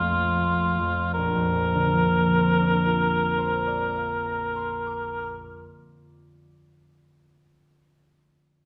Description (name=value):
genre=classical, impressionist duo for cor anglais and harp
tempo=24-28 BPM (dotted quarters)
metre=6/8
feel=rubato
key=Bb major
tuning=A4 = 440 Hz
part: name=warm cor anglais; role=melody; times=0.0-5.4 s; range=F4 to Bb4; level=-27 LUFS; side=equal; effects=none
part: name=concert harp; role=accompaniment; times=0.0-7.2 s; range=Bb1 to F6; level=-27 LUFS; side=equal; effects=none
room=wet recital hall reverb, RT60 1.4 s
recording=recorded in a church or concert hall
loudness=-24 LUFS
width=mono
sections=0.0-1.2 A section; 1.2-5.8 B section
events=slowing down 0.0-1.2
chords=0.0 Bbmaj9; 1.2 Bbadd9